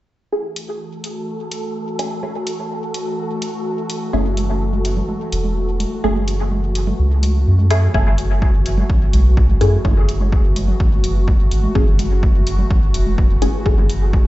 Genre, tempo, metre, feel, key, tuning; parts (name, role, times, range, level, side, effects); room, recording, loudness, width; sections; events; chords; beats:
dub techno; 126 BPM; 4/4; straight; F# minor; A4 = 440 Hz
airy breathy pad; sustained chords; 0.6-14.3 s; E3 to F#4; -25 LUFS; equal; chorus, sidechain pumping
filtered dub chord stab; stabs; 0.3-13.7 s; A3 to G#4; -24 LUFS; left 1 dB; phaser, sidechain pumping, dub echo
wind-like tuned noise texture; texture; 0.8-8.0 s; A4; -32 LUFS; right 2 dB; built-in reverb, sidechain pumping
electronic hi-hat; drums; 0.6-14.0 s; -31 LUFS; left 1 dB
soft dub sub bass; bass; 4.1-14.3 s; E1 to F#2; -17 LUFS; equal; tube saturation, sidechain pumping
congas; percussion; 4.4-14.2 s; -30 LUFS; right 2 dB
electronic kick drum; drums; 7.9-14.2 s; -16 LUFS; equal
light reverb; played on a big sound system in a bare room, stone room reverb, nothing above 7.9 kHz; -15 LUFS; side -17 dB against mid
0.3-7.9 A section; 7.9-14.3 B section
filter sweep on analog synth pad 0.3-7.9; filter sweep on synth stab 7.9-14.3
0.3 F#m7
| 0.33 0.80 1.28 1.75 | 2.23 2.71 3.18 3.66 | 4.13 4.61 5.09 5.56 | 6.04 6.51 6.99 7.47 | 7.94 8.42 8.90 9.37 | 9.85 10.32 10.80 11.28 | 11.75 12.23 12.71 13.18 | 13.66 14.13